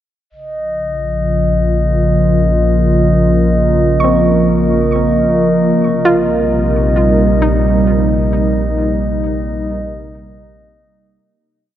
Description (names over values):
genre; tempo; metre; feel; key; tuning
ambient; free time; none; none; Bb dorian; A4 = 439 Hz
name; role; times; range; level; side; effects
warbly tape-like pad; sustained chords; 0.3-11.2 s; C3 to Bb4; -14 LUFS; equal; chorus, built-in reverb
round analog bass; bass; 0.3-11.2 s; Bb1; -18 LUFS; equal; none
glass harmonica; texture; 0.3-11.2 s; Eb5; -18 LUFS; equal; none
soft round pluck; arpeggios; 4.0-9.6 s; C4 to Db6; -20 LUFS; right 1 dB; chorus, tape echo
room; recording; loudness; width
wet huge ambient reverb, RT60 8.3 s; dark, warm production, nothing above 7.8 kHz; -11 LUFS; side -11 dB against mid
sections
0.3-11.2 A section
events
filter sweep on ambient pad 0.3-11.2; fade-out 7.6-11.2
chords
0.3 Bbm; 5.8 Cm7/Bb